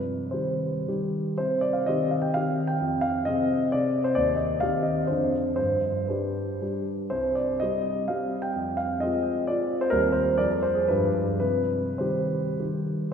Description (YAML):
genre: classical, romantic triple-time dance for piano with dotted rhythms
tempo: 96-142 BPM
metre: 3/4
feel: rubato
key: C minor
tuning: A4 = 440 Hz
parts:
  - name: warm concert grand piano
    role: solo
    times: 0.0-13.1 s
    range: C2 to G5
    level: -24 LUFS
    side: equal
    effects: none
room: wet church reverb, RT60 3.3 s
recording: heard from further back in the room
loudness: -23 LUFS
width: side -7 dB against mid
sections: 0.0-1.4 A section; 1.4-13.1 A section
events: none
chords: 0.0 Cm; 2.8 Fm; 4.2 Cm/Eb; 5.1 Dm7b5/F; 5.6 G; 7.1 Cm; 8.6 Fm; 9.9 Cm/Eb; 10.4 Fmadd11; 10.9 G7b9; 11.4 Cm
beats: 0.33 0.87 | 1.39 1.89 2.37 | 2.81 3.28 3.73 | 4.16 4.62 5.10 | 5.58 6.10 6.62 | 7.12 7.62 8.10 | 8.56 9.03 9.49 | 9.93 10.39 10.89 | 11.41 11.99 12.59